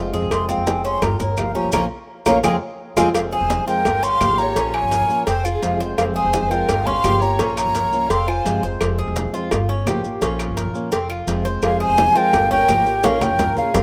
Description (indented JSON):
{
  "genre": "latin, Cuban son and guajira",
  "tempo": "170 BPM",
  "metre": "4/4",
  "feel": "straight",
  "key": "F minor",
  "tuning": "A4 = 440 Hz",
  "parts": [
    { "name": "fingerpicked plugged-in swing-style acoustic guitar", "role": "accompaniment", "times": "0.0-13.8 s", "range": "C3 to G4", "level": "-28 LUFS", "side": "equal", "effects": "none" },
    { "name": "Cuban tres", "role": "arpeggios", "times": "0.0-13.8 s", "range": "Ab3 to C5", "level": "-28 LUFS", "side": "equal", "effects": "none" },
    { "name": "upright bass", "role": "bass", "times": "0.0-13.8 s", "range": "E1 to Bb2", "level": "-28 LUFS", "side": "equal", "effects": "none" },
    { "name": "maracas", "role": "percussion", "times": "0.1-13.8 s", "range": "none", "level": "-36 LUFS", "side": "equal", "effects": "none" },
    { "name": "breathy mellow silver concert flute", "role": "melody", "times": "0.3-8.6, 11.6-13.8 s", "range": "Db5 to C6", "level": "-22 LUFS", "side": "equal", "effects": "none" },
    { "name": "claves", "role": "percussion", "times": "0.3-13.4 s", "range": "none", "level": "-35 LUFS", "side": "equal", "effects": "none" },
    { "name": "congas", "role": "percussion", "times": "0.3-13.8 s", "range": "none", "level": "-28 LUFS", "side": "equal", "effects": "none" },
    { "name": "cowbell", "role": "percussion", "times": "0.3-13.8 s", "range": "none", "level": "-28 LUFS", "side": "equal", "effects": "none" },
    { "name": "rich studio violin section", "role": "second line", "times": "3.1-8.6, 11.6-13.8 s", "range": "Ab4 to F5", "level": "-32 LUFS", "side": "equal", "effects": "none" }
  ],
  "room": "moderate plate reverb, RT60 2.5 s",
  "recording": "none",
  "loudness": "-19 LUFS",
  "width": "mono",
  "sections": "0.0-3.1 A section; 3.1-13.8 B section",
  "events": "flute solo 0.0-3.1; band accent 1.7-3.1; drum fill 13.0-13.8",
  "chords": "0.0 Fm; 1.0 Gm7b5; 1.7 Bbm; 2.4 Fm; 3.9 Gm7b5; 4.6 Bbm; 5.3 Fm; 6.7 Gm7b5; 7.4 Bbm; 8.1 Fm; 9.5 Gm7b5; 10.2 Bbm; 10.9 Fm; 12.3 Gm7b5; 13.0 Bbm"
}